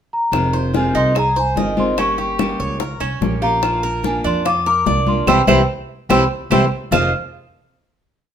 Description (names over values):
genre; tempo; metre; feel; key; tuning
latin, Cuban son and guajira; 146 BPM; 4/4; straight; F minor; A4 = 439 Hz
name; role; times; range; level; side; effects
large celesta; melody; 0.1-7.1 s; G5 to F6; -20 LUFS; left 1 dB; none
flamenco guitar; accompaniment; 0.3-7.1 s; F2 to G4; -23 LUFS; left 2 dB; none
upright bass; bass; 0.3-7.1 s; F1 to F2; -22 LUFS; right 1 dB; none
bongos; percussion; 0.3-7.0 s; none; -25 LUFS; left 6 dB; none
claves; percussion; 0.3-7.0 s; none; -27 LUFS; right 4 dB; none
congas; percussion; 0.3-7.0 s; none; -24 LUFS; left 4 dB; none
Cuban tres; arpeggios; 0.5-7.1 s; Db4 to Eb5; -21 LUFS; right 3 dB; none
room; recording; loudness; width
moderate large studio reverb, RT60 0.9 s; minimal, uncompressed stereo recording; -15 LUFS; side -8 dB against mid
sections
0.0-0.3 pickup bar; 0.3-6.9 verse; 6.9-8.3 final chord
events
band accent 5.3-6.9; drum fill 6.1-6.9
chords
0.3 Fm7; 2.0 Gdim; 3.6 Bb; 5.3 C; 6.9 F7(no3)